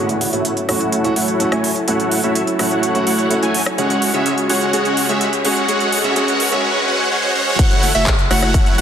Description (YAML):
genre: EDM, festival progressive house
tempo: 126 BPM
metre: 4/4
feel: straight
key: F# minor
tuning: A4 = 439 Hz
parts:
  - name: dark grand piano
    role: accompaniment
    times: 0.0-6.6 s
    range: C#3 to G#4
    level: -22 LUFS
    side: right 1 dB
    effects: sidechain pumping, tape echo
  - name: lush unison pad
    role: sustained chords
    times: 0.0-8.8 s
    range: C#3 to B4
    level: -27 LUFS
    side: left 1 dB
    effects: chorus, sidechain pumping
  - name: dense compressed supersaw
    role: riff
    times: 0.0-8.8 s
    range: G#3 to G#5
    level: -17 LUFS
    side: equal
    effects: sidechain pumping, low-pass filter, tape echo
  - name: saturated sub bass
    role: bass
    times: 0.0-8.8 s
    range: F#1 to C#2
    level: -29 LUFS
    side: equal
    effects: none
  - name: riser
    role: sound effects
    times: 0.0-7.6 s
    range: none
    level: -28 LUFS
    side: left 1 dB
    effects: none
  - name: big-room dance drum kit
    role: drums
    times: 0.1-8.8 s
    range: crash cymbal, handclaps, hi-hat, rim click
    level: -22 LUFS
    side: right 1 dB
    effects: soft clipping on snare, high-pass filter on snare, high-pass filter on toms, high-pass filter on hats, high-pass filter on cymbals
  - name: plucky unison lead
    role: arpeggios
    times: 7.6-8.8 s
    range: E5 to F#5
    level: -21 LUFS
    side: equal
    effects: sidechain pumping, tape echo
  - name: electronic kick drum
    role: drums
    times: 7.6-8.6 s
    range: none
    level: -15 LUFS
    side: equal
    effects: none
room: wet lush hall reverb, RT60 1.9 s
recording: dense, heavily limited modern master, high-pass filter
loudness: -14 LUFS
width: side -8 dB against mid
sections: 0.0-7.6 A section; 7.6-8.8 B section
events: build-up 0.0-7.6; filter sweep on supersaw synth 0.0-7.6; filter sweep 0.0-7.6; drop 7.6-8.8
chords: 0.0 F#m7; 3.8 C#sus4; 5.7 G#dim; 7.6 F#m7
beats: 0.45 0.93 1.40 | 1.88 2.35 2.83 3.31 | 3.78 4.26 4.74 5.21 | 5.69 6.16 6.64 7.12 | 7.59 8.07 8.54